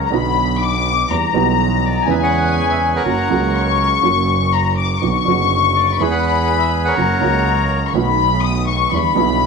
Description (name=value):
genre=tango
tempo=123 BPM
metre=4/4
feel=rubato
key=B harmonic minor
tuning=A4 = 440 Hz
part: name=warm studio violin section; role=second line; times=0.0-9.5 s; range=G#5 to D#6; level=-18 LUFS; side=left 9 dB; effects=none
part: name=dark upright piano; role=accompaniment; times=0.0-9.5 s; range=F#1 to G#4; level=-20 LUFS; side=right 7 dB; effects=none
part: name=rich double bass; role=bass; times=0.0-9.5 s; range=F#1 to E2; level=-21 LUFS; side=right 1 dB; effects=none
part: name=bandoneon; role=melody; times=1.9-7.8 s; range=G#4 to G#5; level=-20 LUFS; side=right 1 dB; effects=none
room=wet echo chamber reverb, RT60 1.6 s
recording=1960s-style stereo with parts hard left and right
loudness=-14 LUFS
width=side -4 dB against mid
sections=0.0-9.5 A section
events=none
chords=0.1 Bm; 1.1 Em; 2.1 C#m7/E; 3.0 F#; 5.0 Bm; 6.0 E; 7.0 F#; 7.9 B7; 8.9 Em7